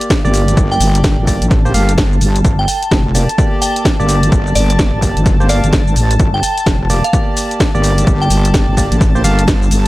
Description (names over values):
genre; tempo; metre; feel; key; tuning
bass house; 128 BPM; 4/4; swing 62% on 16ths; G minor; A4 = 440 Hz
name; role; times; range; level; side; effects
percussive organ stab; stabs; 0.0-9.4 s; Bb3 to F5; -20 LUFS; right 1 dB; chorus, sidechain pumping, dub echo
garage drum kit; drums; 0.0-9.9 s; hi-hat, shaker, snare drum; -20 LUFS; equal; none
granular cloud pad; texture; 0.5-9.9 s; A5; -24 LUFS; left 1 dB; built-in reverb, sidechain pumping
electronic kick drum; drums; 0.1-9.6 s; none; -15 LUFS; equal; overdrive
wobble bass; bass; 0.2-9.9 s; F1 to A1; -14 LUFS; equal; chorus, tube saturation, sidechain pumping
glassy synth bell; melody; 0.7-8.9 s; D5 to G5; -22 LUFS; right 1 dB; chorus, tremolo, dub echo
room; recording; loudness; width
digital ambience; none; -10 LUFS; side -18 dB against mid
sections
0.0-9.9 A section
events
none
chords
0.0 Gm